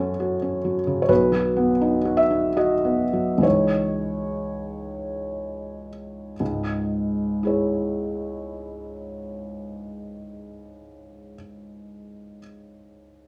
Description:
neoclassical minimalist piano; 56-90 BPM; 3/4; rubato; C# minor; A4 = 438 Hz
felt-muted upright piano; solo; 0.0-13.3 s; B1 to E5; -24 LUFS; equal
light reverb; rough home demo mix, studio reverb; -23 LUFS; mono
0.0-6.4 A section; 6.4-12.6 B section
slowing down 0.1-6.4
0.0 F#m; 1.1 B; 3.4 C#madd9; 6.4 C#m

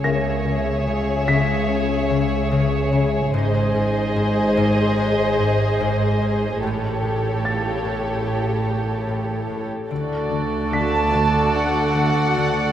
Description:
cinematic; 73 BPM; 4/4; straight; A4 = 441 Hz
dark studio violin section; melody; 0.0-12.7 s; C#5 to A5; -27 LUFS; left 1 dB
dark studio violin section; second line; 0.0-12.7 s; G4 to D5; -24 LUFS; equal
concert harp; riff; 0.0-12.7 s; G#2 to D4; -24 LUFS; left 4 dB
dark studio double bass section; bass; 0.0-12.7 s; G#1 to D2; -28 LUFS; right 4 dB
warm studio cello section; bass; 0.0-12.7 s; C#2 to A2; -26 LUFS; right 1 dB
dark concert grand piano; texture; 0.0-12.7 s; Bb4 to B6; -30 LUFS; equal
warm studio viola section; accompaniment; 9.9-12.7 s; A3 to F#4; -24 LUFS; right 3 dB
wet concert hall reverb, RT60 2.0 s; -18 LUFS; side -10 dB against mid
0.0-9.9 A section; 9.9-12.7 B section
0.0 C#m; 3.3 G#; 6.6 A7; 9.9 D

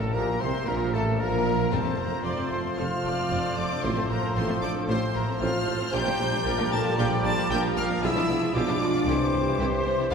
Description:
classical; 114 BPM; 4/4; straight; F major; A4 = 444 Hz
silver concert flute; second line; 0.0-10.1 s; A5 to C6; -37 LUFS; left 4 dB
warm oboe; second line; 0.0-10.1 s; A4 to D5; -38 LUFS; equal
warm studio violin section; second line; 0.0-10.1 s; G3 to C5; -36 LUFS; left 3 dB
rich symphonic viola section; accompaniment; 0.0-10.1 s; F4 to D5; -34 LUFS; right 2 dB
bright trombone section; sustained chords; 0.0-10.0 s; A2 to A3; -35 LUFS; right 2 dB
dark French horn section; sustained chords; 0.0-10.1 s; F3 to A4; -33 LUFS; left 1 dB
concert harp; arpeggios; 0.0-10.1 s; F2 to C5; -36 LUFS; left 4 dB
warm trumpet; stabs; 0.0-10.1 s; F4 to A5; -34 LUFS; right 1 dB
mellow tuba; bass; 0.0-10.1 s; F1 to D2; -34 LUFS; right 2 dB
rich symphonic cello section; bass; 0.0-10.1 s; F2 to C3; -33 LUFS; right 2 dB
rich symphonic double bass section; bass; 0.0-10.1 s; F1 to D2; -32 LUFS; right 2 dB
warm symphonic violin section; melody; 0.1-10.1 s; F5 to A6; -35 LUFS; left 2 dB
clear clarinet; second line; 0.1-10.1 s; G4 to C5; -37 LUFS; left 2 dB
warm bassoon; accompaniment; 0.1-10.1 s; E3 to C4; -35 LUFS; left 2 dB
timpani; percussion; 1.7-2.5, 9.1-9.8 s; F2 to C3; -37 LUFS; left 2 dB
wet scoring stage reverb, RT60 1.6 s; heard from further back in the room; -23 LUFS; side -6 dB against mid
0.0-10.1 A section
0.0 C7; 1.7 F; 3.8 F/A; 5.9 Gm7/Bb; 8.0 Bdim7; 9.1 C

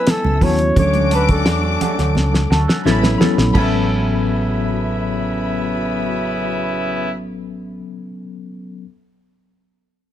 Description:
lush 1970s-style soul; 86 BPM; 4/4; straight; A major; A4 = 440 Hz
breathy flugelhorn; melody; 0.0-2.8 s; A4 to C#5; -21 LUFS; equal
dark studio string section; second line; 0.0-7.1 s; D4 to E6; -28 LUFS; left 2 dB
mellow tine electric piano; accompaniment; 0.0-8.9 s; F#3 to A4; -22 LUFS; left 3 dB; slow stereo tremolo
warm horn section; stabs; 0.0-7.1 s; C#3 to G#5; -25 LUFS; right 1 dB
glockenspiel with rubber mallets; texture; 0.0-7.8 s; A5 to B5; -34 LUFS; right 2 dB; stereo widening
electric guitar through a small old amp; riff; 0.1-7.9 s; F#3 to A4; -28 LUFS; right 2 dB; wah
cloth-damped thuddy drum kit; drums; 0.1-3.7 s; crash cymbal, hi-hat, kick drum, snare drum; -19 LUFS; equal
congas; percussion; 0.1-3.9 s; -26 LUFS; right 7 dB
hollow-body short-scale fingered electric bass; bass; 0.2-7.8 s; A1 to E2; -20 LUFS; equal
small room ambience; -15 LUFS; side -11 dB against mid
0.0-3.5 A section; 3.5-6.3 B section
drum fill 2.2-3.5
0.0 A69; 0.8 Dmaj7; 2.9 A69

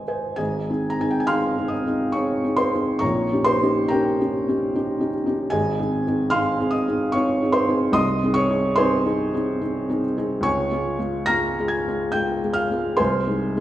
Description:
classical, romantic nocturne for solo piano; 55-77 BPM; 3/4; rubato; Ab major; A4 = 440 Hz
felt-muted upright piano; solo; 0.0-13.6 s; Ab1 to Bb6; -20 LUFS; equal
wet recital hall reverb, RT60 1.5 s; heard from further back in the room; -20 LUFS; side -13 dB against mid
0.4-13.6 A section
0.4 Ab; 3.0 Eb7/Bb; 5.5 Ab; 8.0 Ab/C; 10.5 Db; 13.0 Ab/C

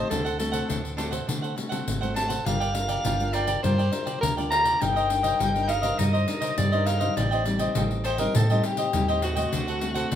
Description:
samba and choro; 102 BPM; 4/4; straight; G minor; A4 = 441 Hz
growling soprano saxophone; melody; 0.0-10.2 s; F#4 to Bb5; -27 LUFS; left 1 dB
cavaquinho; accompaniment; 0.0-10.2 s; D4 to G5; -30 LUFS; right 1 dB
nylon-string guitar; accompaniment; 0.0-10.2 s; A2 to Bb4; -31 LUFS; left 1 dB
hollow-body short-scale fingered electric bass; bass; 0.0-10.2 s; G1 to D3; -28 LUFS; right 1 dB
pandeiro; percussion; 0.1-10.2 s; -32 LUFS; left 4 dB
wet studio reverb, RT60 0.5 s; band playing live in one room; -22 LUFS; side -10 dB against mid
0.0-10.2 A section
0.1 D7; 2.5 Gm7; 4.8 Cm9/G; 7.2 Am7b5; 9.5 D7

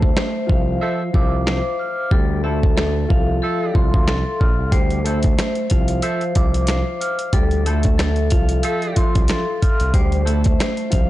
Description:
hip hop, boom-bap hip-hop; 92 BPM; 4/4; swing 55% on 16ths; D minor; A4 = 439 Hz
mellow electric guitar; melody; 0.0-11.1 s; F3 to A4; -25 LUFS; right 2 dB; spring reverb, high-pass filter, low-pass filter, analog delay
vibraphone with hard mallets; accompaniment; 0.0-11.1 s; A4 to F6; -24 LUFS; left 3 dB; cassette tape, high-pass filter, low-pass filter
smooth synth bass; bass; 0.0-11.1 s; Bb1 to D2; -21 LUFS; equal; tube saturation
dusty soul sampler-style drum kit; drums; 0.0-11.1 s; hi-hat, kick drum, snare drum; -18 LUFS; equal
warm saxophone section; stabs; 0.8-10.4 s; F3 to E5; -30 LUFS; right 3 dB; high-pass filter, low-pass filter, analog delay
digital ambience; blown-out, overdriven recording, overdrive, nothing above 10.6 kHz; -16 LUFS; side -15 dB against mid
0.0-11.1 A section
break 0.0-4.7
0.0 Dm9; 2.1 Fmaj7; 4.7 Dm9

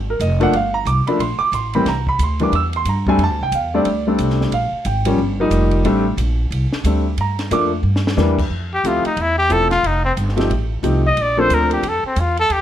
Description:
jazz, small-group swing and bop; 181 BPM; 4/4; swing 62% on 8ths; F major; A4 = 440 Hz
upright bass; bass; 0.0-12.6 s; E1 to G2; -20 LUFS; equal
warm concert grand piano; accompaniment; 0.1-11.8 s; E3 to E6; -18 LUFS; equal
compact cocktail drum kit; drums; 0.2-12.6 s; crash cymbal, hi-hat, kick drum, ride cymbal, snare drum; -30 LUFS; equal
warm trumpet; melody; 8.7-12.6 s; C4 to Eb5; -17 LUFS; left 1 dB; plate reverb
light reverb; -15 LUFS; side -11 dB against mid
0.0-8.5 A section; 8.5-12.6 A section
drum fill 7.8-8.2; trumpet solo 8.5-12.6
0.0 Fmadd11; 0.5 Gm9; 1.9 C9; 3.2 F69; 4.5 Bbm7; 5.2 Ebadd9; 5.9 Amadd11; 7.2 Gm7; 7.8 Em7b5; 8.5 Fmaj7; 9.8 F7; 11.2 Bbmaj7

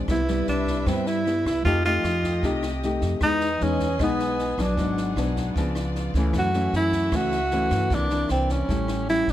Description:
bossa nova; 153 BPM; 4/4; straight; A4 = 440 Hz
nylon-string guitar; accompaniment; 0.0-9.3 s; F#2 to G4; -26 LUFS; left 2 dB
dark chamber string section; sustained chords; 0.0-9.3 s; A3 to G#5; -36 LUFS; equal
upright bass; bass; 0.0-9.3 s; G#1 to G2; -28 LUFS; equal
breathy tenor saxophone; melody; 0.1-9.3 s; B3 to F#4; -24 LUFS; right 1 dB; plate reverb
compact cocktail drum kit; drums; 0.1-9.3 s; kick drum, rim click, snare drum; -32 LUFS; equal
light reverb; -21 LUFS; side -12 dB against mid
0.0-9.3 A section
0.1 Cmaj7; 1.7 F9; 3.2 Emaj7; 4.8 G#m7b5; 5.6 C#7b9; 6.3 F#m7; 7.9 C9; 8.7 A7

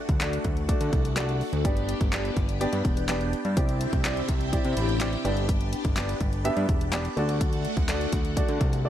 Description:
dance-pop; 125 BPM; 4/4; straight; G major; A4 = 440 Hz
warm baby grand piano; accompaniment; 0.0-8.9 s; A3 to B5; -31 LUFS; equal; sidechain pumping
phased string machine; sustained chords; 0.0-8.9 s; C3 to G4; -33 LUFS; left 1 dB; ensemble chorus, phaser, sidechain pumping
fat analog bass; bass; 0.1-8.9 s; E1 to D3; -28 LUFS; equal; sidechain pumping
house drum kit; drums; 0.1-8.8 s; handclaps, hi-hat, kick drum, snare drum; -27 LUFS; equal
group handclap; percussion; 0.2-8.0 s; -37 LUFS; left 10 dB
little or no reverb; -24 LUFS; side -11 dB against mid
0.0-8.9 A section
grand piano fill 4.5-5.5
0.0 D; 1.6 G; 3.6 Cadd9; 5.2 G; 7.2 D

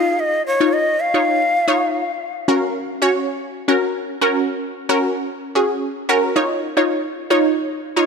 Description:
pop; 112 BPM; 4/4; straight; F# major; A4 = 439 Hz
breathy shakuhachi; melody; 0.0-2.1 s; C#5 to E#5; -19 LUFS; left 1 dB; ping-pong delay
wide unison pluck; accompaniment; 0.0-8.1 s; C#4 to D#5; -18 LUFS; equal; phaser
moderate lush hall reverb, RT60 2.6 s; high-pass filter; -16 LUFS; side -5 dB against mid
0.0-2.3 A section; 2.3-8.1 B section
build-up 2.3-8.1
0.0 C#add9; 2.3 F#; 6.4 C#add9

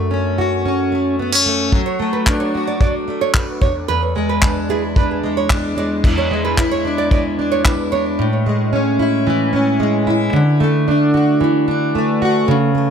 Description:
acoustic pop; 112 BPM; 4/4; straight; A major; A4 = 440 Hz
fingerpicked plugged-in steel-string acoustic guitar; accompaniment; 0.0-12.9 s; E2 to F#4; -15 LUFS; equal; double-tracked left and right
cloth-damped thuddy drum kit; drums; 1.7-7.8 s; crash cymbal, handclaps, kick drum; -16 LUFS; equal
nylon-string guitar; arpeggios; 1.9-8.0 s; G#4 to D5; -22 LUFS; right 7 dB; digital delay
light reverb; -14 LUFS; side -7 dB against mid
0.0-6.0 A section; 6.0-8.2 B section; 8.2-12.9 C section
0.0 F#m; 1.7 D/F#; 3.6 E7; 8.2 Amaj7; 10.3 Dadd9

